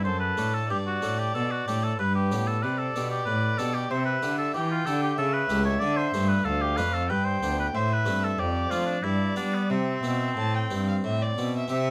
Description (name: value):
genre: classical, baroque-style sonata movement with continuo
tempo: 93 BPM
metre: 3/4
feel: straight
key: G major, C major from 3.9 s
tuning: A4 = 438 Hz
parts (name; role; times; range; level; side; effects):
- dark violin; melody; 0.0-11.9 s; A4 to A5; -36 LUFS; equal; none
- clear oboe; second line; 0.0-11.9 s; B3 to E5; -31 LUFS; equal; none
- harpsichord; accompaniment; 0.0-11.9 s; C#2 to A4; -36 LUFS; equal; none
- rich cello; bass; 0.0-11.9 s; C#2 to G3; -30 LUFS; equal; none
room: light reverb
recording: close, detailed microphones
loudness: -26 LUFS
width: mono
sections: 0.0-11.7 A section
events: none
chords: 0.1 D/F#; 2.0 G; 3.9 C; 5.2 A7/C#; 5.8 Dm; 7.1 G7; 7.7 Am; 8.4 Dm7/F; 9.0 G7; 9.7 C